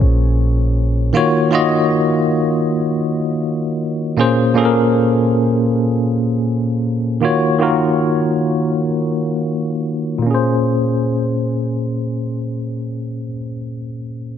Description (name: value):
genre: contemporary R&B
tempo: free time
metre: none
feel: none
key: Bb minor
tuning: A4 = 440 Hz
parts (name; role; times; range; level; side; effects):
- bell-like tine electric piano; accompaniment; 0.0-14.4 s; Bb2 to Eb5; -15 LUFS; equal; medium stereo tremolo, low-pass filter
- clean 808-style bass; bass; 0.0-1.1 s; Bb1; -15 LUFS; equal; none
room: light reverb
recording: none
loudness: -15 LUFS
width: side -9 dB against mid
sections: 0.0-10.3 A section; 10.3-13.3 B section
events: filter sweep on tine electric piano 0.0-10.3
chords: 0.0 Bbm7; 1.1 Ebm7; 4.2 Bbm7; 7.2 Ebm7; 10.3 Bbm7